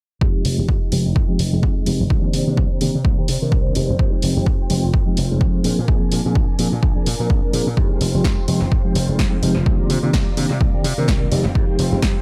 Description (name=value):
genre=filtered disco house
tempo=127 BPM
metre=4/4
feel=swing 57% on 16ths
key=F dorian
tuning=A4 = 443 Hz
part: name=mellow reed electric piano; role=accompaniment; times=0.2-12.0 s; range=Eb3 to Bb4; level=-25 LUFS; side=equal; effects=fast tremolo, phaser, sidechain pumping, low-pass filter, analog delay
part: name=phased string machine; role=sustained chords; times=0.2-12.2 s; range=C4 to Bb5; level=-34 LUFS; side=equal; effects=ensemble chorus, phaser, sidechain pumping, low-pass filter
part: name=glassy slap bass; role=bass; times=0.2-12.1 s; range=F1 to C3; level=-24 LUFS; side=equal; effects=tube saturation, sidechain pumping, low-pass filter
part: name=electronic kick drum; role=drums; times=0.2-12.1 s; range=none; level=-21 LUFS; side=equal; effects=none
part: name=tambourine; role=percussion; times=0.2-12.2 s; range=none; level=barely audible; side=none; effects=none
part: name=punchy analog drum machine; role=drums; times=0.4-12.1 s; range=hi-hat, snare drum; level=-29 LUFS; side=equal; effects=sidechain pumping on hats, analog delay
room=little or no reverb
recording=echo-heavy mix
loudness=-18 LUFS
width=mono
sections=0.2-12.2 A section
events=filter sweep 0.2-12.2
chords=0.2 Fm9; 2.1 Cm9; 3.8 Fm9; 5.6 Bb7; 7.8 Fm9; 9.7 Cm9; 11.3 Fm9